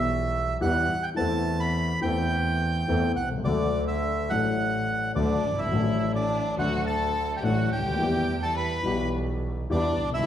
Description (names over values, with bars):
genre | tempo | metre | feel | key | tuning
tango | 106 BPM | 4/4 | rubato | unclear | A4 = 438 Hz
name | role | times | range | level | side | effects
bandoneon | melody | 0.0-10.3 s | D5 to B5 | -29 LUFS | right 3 dB | none
dark concert grand piano | accompaniment | 0.0-10.3 s | F#1 to A4 | -27 LUFS | left 4 dB | none
clear double bass | bass | 0.0-10.3 s | G1 to E2 | -30 LUFS | right 2 dB | none
warm violin | second line | 5.2-10.3 s | D4 to B4 | -32 LUFS | left 1 dB | none
room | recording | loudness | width
wet recital hall reverb, RT60 1.6 s | recorded in a church or concert hall | -24 LUFS | side -10 dB against mid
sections
0.0-10.3 A section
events
none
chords
0.0 Em; 1.2 Am/E; 3.5 D; 8.0 Em